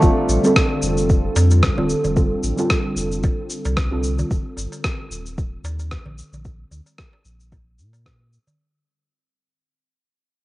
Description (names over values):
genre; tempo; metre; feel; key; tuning
organic downtempo; 112 BPM; 4/4; swing 56% on 16ths; F mixolydian; A4 = 440 Hz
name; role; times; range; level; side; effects
deep mellow chord stab; accompaniment; 0.0-4.3 s; D3 to A4; -23 LUFS; right 1 dB; chorus, sidechain pumping, tape echo
warbly tape-like pad; sustained chords; 0.0-8.6 s; D3 to A4; -25 LUFS; equal; chorus, built-in reverb, sidechain pumping
kora; arpeggios; 0.0-1.8 s; A3 to D4; -26 LUFS; equal; tape echo
warm sub bass; bass; 0.0-8.4 s; Eb1 to Bb2; -21 LUFS; equal; none
electronic cabasa and rim click; drums; 0.0-8.6 s; none; -25 LUFS; equal; none
electronic kick drum; drums; 0.0-8.2 s; none; -20 LUFS; equal; none
darbuka; percussion; 0.3-8.6 s; none; -30 LUFS; right 1 dB; none
room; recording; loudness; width
light reverb, digital ambience; home recording on cassette, nothing above 10.3 kHz; -17 LUFS; side -18 dB against mid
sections
0.0-8.6 A section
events
fade-out 0.0-8.6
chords
0.0 Fadd9; 4.3 Ebmaj7; 6.4 Bbmaj7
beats
| 0.02 0.56 1.09 1.63 | 2.16 2.70 3.23 3.77 | 4.31 4.84 5.38 5.91 | 6.45 6.99 7.52 8.06